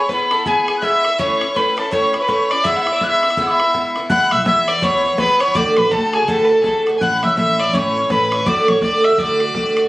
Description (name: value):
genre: celtic folk, Celtic hornpipe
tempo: 165 BPM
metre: 4/4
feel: swing 61% on 8ths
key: E mixolydian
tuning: A4 = 445 Hz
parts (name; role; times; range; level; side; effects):
- wooden whistle; melody; 0.0-9.6 s; G#5 to F#6; -19 LUFS; equal; none
- rich fiddle; second line; 0.0-9.8 s; G#4 to G#5; -19 LUFS; left 1 dB; none
- Irish bouzouki; accompaniment; 0.0-9.9 s; G#2 to F#4; -19 LUFS; right 1 dB; none
- bodhran; percussion; 0.1-9.9 s; none; -27 LUFS; equal; none
- upright bass; bass; 4.1-9.9 s; A1 to E2; -24 LUFS; equal; none
room: moderate small room reverb, RT60 0.6 s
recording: recorded on a phone in the room, studio ambience, compression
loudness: -14 LUFS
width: side -18 dB against mid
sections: 0.0-4.1 A section; 4.1-9.9 B section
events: none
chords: 0.0 E; 1.2 A; 2.6 E; 5.6 D; 7.0 A; 8.5 D